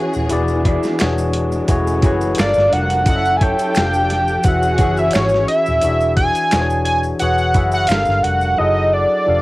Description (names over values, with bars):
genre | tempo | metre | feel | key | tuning
R&B, neo-soul | 87 BPM | 4/4 | swing 53% on 16ths | unclear | A4 = 440 Hz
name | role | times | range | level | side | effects
barky tine electric piano | accompaniment | 0.0-9.4 s | E3 to F#5 | -21 LUFS | left 2 dB | overdrive, cassette tape
warm studio string section | sustained chords | 0.0-5.8 s | E3 to A4 | -25 LUFS | right 1 dB | cassette tape
maracas and finger snaps | percussion | 0.1-8.6 s | none | -34 LUFS | right 3 dB | none
vintage muted fingered electric bass | bass | 0.2-9.4 s | D#1 to G#1 | -21 LUFS | equal | none
dusty soul sampler-style drum kit | drums | 0.3-8.4 s | finger snaps, hi-hat, kick drum, snare drum | -18 LUFS | equal | cassette tape
electric guitar through a small old amp | second line | 0.7-4.9 s | E4 to D5 | -25 LUFS | right 2 dB | cassette tape, plate reverb
fat analog lead | melody | 2.4-9.4 s | C#5 to G#5 | -16 LUFS | equal | none
room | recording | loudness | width
light reverb | home recording on cassette, vinyl crackle | -14 LUFS | side -19 dB against mid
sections
0.0-9.4 A section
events
none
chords
0.3 E7; 1.0 E13; 1.7 Amaj13/E; 2.4 Gm7; 3.1 F#m7; 3.8 F69; 4.4 E69; 5.8 E7; 6.5 E13; 7.2 E69; 7.9 Gm7; 8.6 F#m7